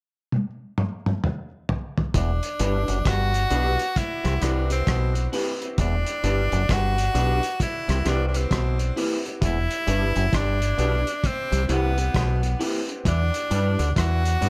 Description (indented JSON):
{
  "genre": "roots reggae",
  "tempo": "66 BPM",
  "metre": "4/4",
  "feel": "swing 62% on 16ths",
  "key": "E minor",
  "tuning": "A4 = 441 Hz",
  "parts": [
    { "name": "cloth-damped thuddy drum kit", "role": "drums", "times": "0.3-14.5 s", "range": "hi-hat, kick drum, rim click, toms", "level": "-30 LUFS", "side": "equal", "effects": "none" },
    { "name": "auto-wah clav", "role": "riff", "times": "2.1-14.5 s", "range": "E2 to G3", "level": "-34 LUFS", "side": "equal", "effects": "overdrive" },
    { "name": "deep dub fingered electric bass", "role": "bass", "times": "2.1-14.5 s", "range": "E1 to G2", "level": "-26 LUFS", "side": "equal", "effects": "none" },
    { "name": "edgy tenor saxophone", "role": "melody", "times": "2.2-14.5 s", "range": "B3 to F#4", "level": "-30 LUFS", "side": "equal", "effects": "dub echo" },
    { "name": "electric guitar through a small old amp", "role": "accompaniment", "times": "2.6-14.5 s", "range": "D4 to B4", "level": "-35 LUFS", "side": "equal", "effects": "ensemble chorus, dub echo" },
    { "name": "clear upright piano", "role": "stabs", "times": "2.6-14.5 s", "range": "C4 to B4", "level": "-35 LUFS", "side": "equal", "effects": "none" }
  ],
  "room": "light reverb",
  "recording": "none",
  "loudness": "-24 LUFS",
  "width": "mono",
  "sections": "0.0-2.1 A section; 2.1-14.5 B section",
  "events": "drum fill 0.3-2.1",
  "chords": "0.0 N.C.; 2.1 Em7; 4.0 Cmaj7; 5.8 Em7; 7.6 Cmaj7; 9.4 Em7; 11.2 Cmaj7; 13.1 Em7"
}